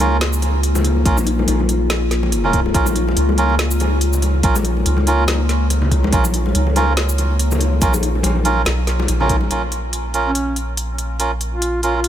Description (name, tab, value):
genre	deep dubstep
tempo	142 BPM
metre	4/4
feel	swing 56% on 16ths, half-time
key	Bb minor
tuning	A4 = 440 Hz
part	deep dark ambient pad	sustained chords	0.0-12.1 s	Bb3 to Db5	-25 LUFS	left 4 dB	chorus, built-in reverb
part	melodica	stabs	0.0-12.0 s	Db4 to Bb4	-22 LUFS	right 3 dB	dub echo
part	soft dub sub bass	bass	0.0-12.1 s	Bb1 to Db2	-18 LUFS	equal	none
part	deep house drum kit	drums	0.0-12.1 s	hi-hat, shaker, snare drum	-24 LUFS	equal	studio reverb
part	congas	percussion	0.0-9.5 s	none	-24 LUFS	left 4 dB	dub echo
part	electronic kick drum	drums	1.1-9.4 s	none	-19 LUFS	equal	studio reverb
part	mellow duduk	melody	10.3-12.1 s	Db4 to F4	-23 LUFS	right 1 dB	dub echo
room	small room ambience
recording	none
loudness	-15 LUFS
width	side -11 dB against mid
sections	0.0-9.5 A section; 9.5-12.1 B section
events	none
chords	0.0 Bbm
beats	0.21 0.63 | 1.06 1.48 1.90 2.32 | 2.75 3.17 3.59 4.01 | 4.44 4.86 5.28 5.70 | 6.13 6.55 6.97 7.39 | 7.82 8.24 8.66 9.08 | 9.51 9.93 10.35 10.77 | 11.20 11.62 12.04